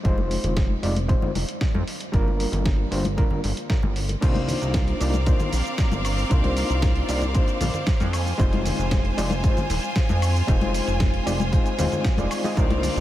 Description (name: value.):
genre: nu-disco, nu disco.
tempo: 115 BPM.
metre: 4/4.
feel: straight.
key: C minor.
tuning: A4 = 440 Hz.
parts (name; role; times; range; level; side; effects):
overdriven reed electric piano; accompaniment; 0.0-13.0 s; G3 to Eb5; -28 LUFS; left 1 dB; fast tremolo, sidechain pumping, diffuse ambient delay.
dusty soul sampler-style drum kit; drums; 0.0-13.0 s; cabasa, crash cymbal, hi-hat, snare drum, woodblock; -32 LUFS; equal; none.
electronic kick drum; drums; 0.0-12.7 s; none; -22 LUFS; equal; none.
chorused synth bass; bass; 0.1-13.0 s; Eb1 to F2; -25 LUFS; equal; none.
congas; percussion; 0.2-12.9 s; none; -32 LUFS; left 2 dB; none.
bright symphonic violin section; sustained chords; 4.2-13.0 s; C4 to Ab5; -29 LUFS; equal; sidechain pumping.
room: light reverb.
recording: none.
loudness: -20 LUFS.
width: side -14 dB against mid.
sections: 0.0-4.2 A section; 4.2-13.0 B section.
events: drop 4.2-13.0.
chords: 0.0 Fm7; 2.1 Gm7; 4.2 Cm11; 8.1 Fm7.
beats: | 0.05 0.57 1.09 1.61 | 2.14 2.66 3.18 3.70 | 4.22 4.74 5.27 5.79 | 6.31 6.83 7.35 7.88 | 8.40 8.92 9.44 9.96 | 10.48 11.01 11.53 12.05 | 12.57.